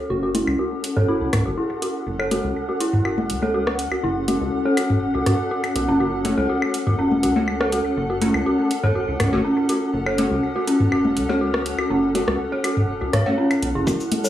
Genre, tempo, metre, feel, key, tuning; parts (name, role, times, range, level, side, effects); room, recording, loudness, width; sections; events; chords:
minimal techno; 122 BPM; 4/4; straight; F# minor; A4 = 440 Hz
granular cloud pad; texture; 0.1-14.3 s; C#4 to F#5; -25 LUFS; left 1 dB; built-in reverb, sidechain pumping
soft struck synth lead; melody; 0.1-1.3 s; E4 to F#4; -28 LUFS; equal; chorus, tremolo, analog delay
rubbery square bass; bass; 0.1-13.8 s; E1 to C#2; -28 LUFS; equal; sidechain pumping
dark detuned synth bell; riff; 0.2-14.3 s; C#4 to C#5; -23 LUFS; equal; chorus, sidechain pumping, low-pass filter, tape echo
electronic hi-hat; drums; 0.3-14.2 s; -31 LUFS; right 2 dB; overdrive
booming analog drum machine; percussion; 0.3-14.2 s; rim click, toms, woodblock; -24 LUFS; left 1 dB; analog delay
wavetable chord stab; stabs; 6.2-13.3 s; A3 to F#4; -28 LUFS; left 1 dB; analog delay
electronic kick drum; drums; 13.9-14.0 s; -22 LUFS; equal; overdrive, high-pass filter on kick
tube shaker; percussion; 13.9-14.3 s; -30 LUFS; left 2 dB
wet studio reverb, RT60 0.5 s; dry, gritty hardware recording, studio reverb; -19 LUFS; side -12 dB against mid
0.0-13.9 A section
0.0 F#m